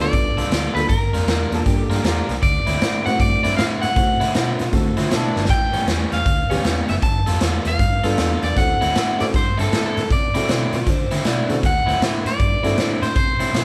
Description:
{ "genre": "electric blues shuffle", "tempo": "156 BPM", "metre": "4/4", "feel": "swing 64% on 8ths", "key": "D mixolydian", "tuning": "A4 = 440 Hz", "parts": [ { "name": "electric guitar at the edge of break-up", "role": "melody", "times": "0.0-13.6 s", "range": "A4 to A5", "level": "-25 LUFS", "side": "equal", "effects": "none" }, { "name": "dark upright piano", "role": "accompaniment", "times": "0.0-13.1 s", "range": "D3 to A5", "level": "-28 LUFS", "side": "equal", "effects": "none" }, { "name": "overdriven electric guitar", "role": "riff", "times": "0.0-13.6 s", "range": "A2 to Bb4", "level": "-30 LUFS", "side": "equal", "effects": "none" }, { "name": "vintage muted fingered electric bass", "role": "bass", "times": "0.0-13.6 s", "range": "F#1 to D3", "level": "-26 LUFS", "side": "equal", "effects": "none" }, { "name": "raw garage drum kit", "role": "drums", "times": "0.0-13.6 s", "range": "hi-hat, kick drum, snare drum", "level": "-23 LUFS", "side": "equal", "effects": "none" }, { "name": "overdriven slide guitar", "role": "second line", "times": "1.6-5.4, 10.8-11.6 s", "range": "D4 to D5", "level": "-32 LUFS", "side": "equal", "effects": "analog delay" } ], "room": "moderate large studio reverb, RT60 1.1 s", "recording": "band playing live in one room", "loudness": "-19 LUFS", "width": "mono", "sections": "0.0-11.6 A section; 11.6-13.6 A section", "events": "drum fill 5.3", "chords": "0.0 G9; 0.9 Gm7; 2.4 D9; 5.5 A9; 7.0 G9; 8.6 D9" }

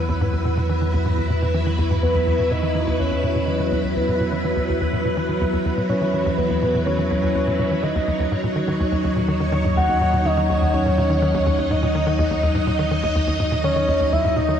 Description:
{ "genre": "ambient, sequencer-driven space music", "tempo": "124 BPM", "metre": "4/4", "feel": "straight", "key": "unclear", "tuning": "A4 = 440 Hz", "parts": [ { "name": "string machine, full ensemble", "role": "sustained chords", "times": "0.0-14.6 s", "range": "F#3 to D#5", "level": "-22 LUFS", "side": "equal", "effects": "ensemble chorus" }, { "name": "tight sequencer bass", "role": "riff", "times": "0.0-14.6 s", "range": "D#2 to E3", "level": "-24 LUFS", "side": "equal", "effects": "analog chorus, tape echo" }, { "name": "analog drone", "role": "bass", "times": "0.0-14.6 s", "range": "D#2 to E2", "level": "-25 LUFS", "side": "equal", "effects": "chorus, tube saturation" }, { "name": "soft octave-layered synth lead", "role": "melody", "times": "2.0-14.6 s", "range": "B4 to F#5", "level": "-24 LUFS", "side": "equal", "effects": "chorus, tape echo" } ], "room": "wet huge ambient reverb, RT60 7.6 s", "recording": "none", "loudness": "-18 LUFS", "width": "side -8 dB against mid", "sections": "0.0-14.6 A section", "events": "filter sweep on analog synth bass 0.0-14.6", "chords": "0.0 Esus2; 7.8 D#m7" }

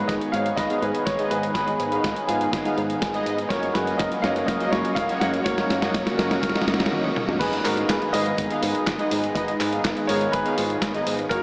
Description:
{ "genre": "italo disco", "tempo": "123 BPM", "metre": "4/4", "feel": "straight", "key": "G# dorian", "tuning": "A4 = 438 Hz", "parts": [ { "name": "warm grand piano", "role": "melody", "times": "0.0-11.4 s", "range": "D#4 to F#5", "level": "-26 LUFS", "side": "equal", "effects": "analog chorus, low-pass filter, diffuse ambient delay" }, { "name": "lush unison pad", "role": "sustained chords", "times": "0.0-11.4 s", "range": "C#3 to G#4", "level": "-28 LUFS", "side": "equal", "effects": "chorus" }, { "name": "analog synth brass", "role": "stabs", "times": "0.0-11.4 s", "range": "A#3 to E#5", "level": "-29 LUFS", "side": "equal", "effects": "chorus" }, { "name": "fingered electric bass with an envelope filter", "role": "bass", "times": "0.0-11.4 s", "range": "F#1 to G#2", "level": "-32 LUFS", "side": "equal", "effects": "none" }, { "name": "dusty soul sampler-style drum kit", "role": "drums", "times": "0.1-11.4 s", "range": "crash cymbal, handclaps, hi-hat, snare drum, toms", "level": "-27 LUFS", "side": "equal", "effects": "none" }, { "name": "kick drum", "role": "drums", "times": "0.1-11.4 s", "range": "none", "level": "-32 LUFS", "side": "equal", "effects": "none" } ], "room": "wet huge ambient reverb, RT60 8.3 s", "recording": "dreamy mix soaked in reverb, small speaker sound", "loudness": "-21 LUFS", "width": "side -33 dB against mid", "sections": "0.0-7.4 A section; 7.4-11.4 B section", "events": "drum fill 0.0-6.9, 6.9-7.4", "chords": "0.0 G#m; 3.5 F#; 7.4 G#m" }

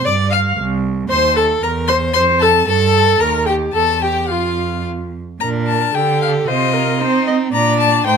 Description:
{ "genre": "quick classical-period movement for string quartet", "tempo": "113 BPM", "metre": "2/4", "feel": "rubato", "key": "Bb major", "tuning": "A4 = 440 Hz", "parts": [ { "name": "rich violin", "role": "melody", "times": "0.0-8.2 s", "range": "Eb5 to F6", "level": "-18 LUFS", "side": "left 8 dB", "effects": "none" }, { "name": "clear violin", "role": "second line", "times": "0.0-8.2 s", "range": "D4 to F5", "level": "-21 LUFS", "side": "left 5 dB", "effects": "none" }, { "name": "warm viola", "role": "accompaniment", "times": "0.0-8.2 s", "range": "F4 to F5", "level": "-18 LUFS", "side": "right 2 dB", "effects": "none" }, { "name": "clear cello", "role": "bass", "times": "0.1-8.2 s", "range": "C2 to C4", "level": "-19 LUFS", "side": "right 5 dB", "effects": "none" } ], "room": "light reverb", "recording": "none", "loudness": "-13 LUFS", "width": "side -6 dB against mid", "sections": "0.0-5.4 A section; 5.4-8.2 B section", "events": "none", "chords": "0.0 G5; 0.6 N.C.; 1.1 Cm/Eb; 1.6 C7/E; 2.1 F; 2.7 Gsus2; 3.2 Eb; 3.7 Emadd11; 4.3 N.C.; 5.4 Bb; 5.9 D5; 6.5 F5/C; 7.5 Bb" }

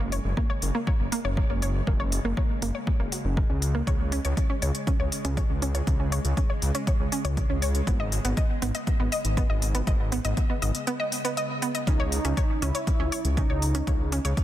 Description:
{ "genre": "melodic techno", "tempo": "120 BPM", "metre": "4/4", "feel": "straight", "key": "unclear", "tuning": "A4 = 439 Hz", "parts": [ { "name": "analog pluck", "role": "arpeggios", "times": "0.0-14.3 s", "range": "A#3 to D#5", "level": "-31 LUFS", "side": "right 1 dB", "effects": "chorus, sidechain pumping, tape echo" }, { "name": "dark detuned saw bass", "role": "bass", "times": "0.0-14.3 s", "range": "F#1 to C#2", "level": "-27 LUFS", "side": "equal", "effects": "sidechain pumping" }, { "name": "bowed-like drone", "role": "drone", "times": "0.0-14.4 s", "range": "C#3 to G#3", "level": "-37 LUFS", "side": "equal", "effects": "built-in reverb, sidechain pumping" }, { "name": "electronic hi-hat", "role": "drums", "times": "0.1-14.4 s", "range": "none", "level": "-33 LUFS", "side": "left 2 dB", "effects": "sidechain pumping on hats, studio reverb" }, { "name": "electronic kick drum", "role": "drums", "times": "0.4-14.4 s", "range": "none", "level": "-25 LUFS", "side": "equal", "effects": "studio reverb" }, { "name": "wide unison lead", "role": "melody", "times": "11.9-14.0 s", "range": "D#4 to E4", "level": "-32 LUFS", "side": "right 1 dB", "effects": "ensemble chorus, cassette tape, sidechain pumping, dub echo" } ], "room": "light reverb, digital ambience", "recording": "dense, heavily limited modern master", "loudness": "-24 LUFS", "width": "side -13 dB against mid", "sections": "0.0-14.4 A section", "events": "none", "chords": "0.0 F#; 3.9 C#5; 7.9 G#m; 11.9 C#madd9" }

